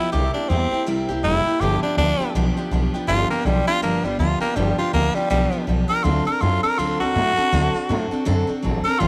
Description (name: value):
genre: rockabilly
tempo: 162 BPM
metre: 4/4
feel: swing 59% on 8ths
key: G mixolydian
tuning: A4 = 440 Hz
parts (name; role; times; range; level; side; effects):
- raspy tenor saxophone; melody; 0.0-9.1 s; G3 to Bb4; -24 LUFS; equal; tape echo
- picked steel-string acoustic guitar; accompaniment; 0.0-9.1 s; G2 to A4; -26 LUFS; equal; none
- upright bass; bass; 0.1-9.1 s; F1 to A2; -25 LUFS; equal; none
room: light reverb, studio reverb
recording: none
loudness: -21 LUFS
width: mono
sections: 0.0-9.1 A section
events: none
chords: 0.1 C7; 1.6 G7; 6.0 D7